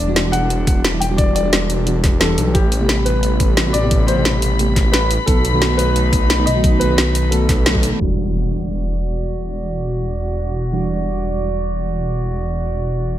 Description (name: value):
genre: liquid drum and bass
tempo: 176 BPM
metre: 4/4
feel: straight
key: E minor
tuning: A4 = 441 Hz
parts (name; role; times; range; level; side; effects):
- dark baby grand piano; melody; 0.0-7.8 s; G4 to G5; -23 LUFS; left 1 dB; tape echo
- warm chamber string section; sustained chords; 0.0-13.2 s; G3 to B5; -26 LUFS; equal; sidechain pumping
- swelling detuned saw bass; bass; 0.0-13.2 s; E1 to B1; -20 LUFS; equal; none
- mellow FM electric piano; accompaniment; 0.1-13.2 s; B2 to A4; -23 LUFS; equal; chorus, low-pass filter, digital delay
- drum and bass drum kit; drums; 0.2-7.9 s; hi-hat, snare drum; -20 LUFS; equal; overdrive, low-pass filter on snare, studio reverb, low-pass filter on hats, low-pass filter on cymbals
- electronic kick drum; drums; 0.7-7.8 s; none; -17 LUFS; equal; overdrive, studio reverb
- impact; sound effects; 8.0-9.4 s; none; -24 LUFS; equal; none
room: digital ambience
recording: low-pass filter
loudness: -15 LUFS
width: side -12 dB against mid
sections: 0.0-8.0 A section; 8.0-13.2 B section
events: band accent 7.7; impact 8.0-9.4; filter sweep on FM electric piano 8.0-13.2; filter sweep 8.0-13.2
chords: 0.0 Em9; 2.5 Am9; 5.3 B7; 8.0 Em9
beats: 0.16 0.50 0.84 | 1.19 1.53 1.87 2.21 | 2.55 2.89 3.23 3.57 | 3.91 4.25 4.59 4.93 | 5.28 5.62 5.96 6.30 | 6.64 6.98 7.32 7.66 | 8.00 8.34 8.69 9.03 | 9.37 9.71 10.05 10.39 | 10.73 11.07 11.41 11.75 | 12.09 12.44 12.78 13.12